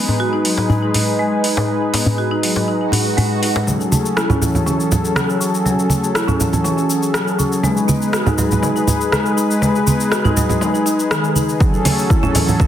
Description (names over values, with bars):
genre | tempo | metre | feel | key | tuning
afro house | 121 BPM | 4/4 | straight | F# dorian | A4 = 440 Hz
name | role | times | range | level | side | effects
warm analog pad | sustained chords | 0.0-12.7 s | F#3 to B4 | -20 LUFS | left 1 dB | chorus, tremolo, sidechain pumping
marimba with medium mallets | arpeggios | 0.0-12.7 s | D#3 to G#4 | -20 LUFS | equal | sidechain pumping, low-pass filter, dub echo
djembe | percussion | 0.1-3.6 s | none | -20 LUFS | left 1 dB | none
deep house drum kit | drums | 0.4-12.7 s | hi-hat, rim click, shaker, toms | -22 LUFS | equal | overdrive, high-pass filter on hats, high-pass filter on toms, high-pass filter on perc, high-pass filter on snare, high-pass filter on room
swell | sound effects | 2.8-3.7 s | none | -24 LUFS | right 4 dB | none
congas | percussion | 3.7-12.7 s | none | -19 LUFS | right 2 dB | none
electronic kick drum | drums | 11.6-12.7 s | none | -14 LUFS | equal | overdrive
room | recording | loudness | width
moderate digital room reverb, RT60 1.2 s, digital ambience | heavily compressed radio sound, multiband compression | -14 LUFS | side -10 dB against mid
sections
0.0-3.7 A section; 3.7-12.7 B section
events
swell 2.8-3.7; build-up 3.7-12.7; drum fill 3.7-12.7; filter sweep on marimba 3.7-12.7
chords
0.0 G#m7; 3.7 F#m; 7.6 G#m; 11.6 F#m7